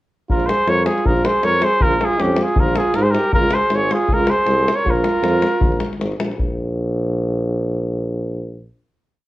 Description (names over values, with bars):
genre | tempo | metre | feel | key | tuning
balkan folk, Balkan brass band | 157 BPM | 2/4 | swing 56% on 16ths | Bb minor | A4 = 441 Hz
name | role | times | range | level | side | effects
warm trumpet | melody | 0.3-6.0 s | G4 to Db5 | -19 LUFS | equal | plate reverb
mellow flugelhorn | second line | 0.3-6.0 s | Db4 to Bb4 | -22 LUFS | right 4 dB | none
warm tuba | bass | 0.3-8.7 s | Ab1 to Ab2 | -21 LUFS | equal | none
davul | percussion | 0.3-6.6 s | none | -21 LUFS | left 1 dB | none
room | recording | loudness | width
moderate studio reverb, RT60 0.6 s | worn, warbling old tape, cassette tape, warbly pitch drift | -16 LUFS | side -16 dB against mid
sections
0.3-6.4 A section; 6.4-7.9 final note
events
none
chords
0.3 Bb5; 3.3 Db5; 4.9 Bb5; 6.4 N.C.